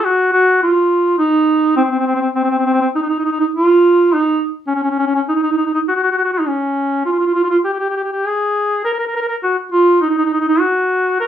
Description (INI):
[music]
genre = italian folk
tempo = 103 BPM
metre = 4/4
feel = straight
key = unclear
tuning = A4 = 440 Hz
[part]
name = warm duduk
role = solo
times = 0.0-11.3 s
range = C4 to Bb4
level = -13 LUFS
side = right 1 dB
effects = none
[sound]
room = wet small room reverb, RT60 0.5 s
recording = heard from further back in the room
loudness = -13 LUFS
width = side -10 dB against mid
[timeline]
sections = 0.0-11.3 A section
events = none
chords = none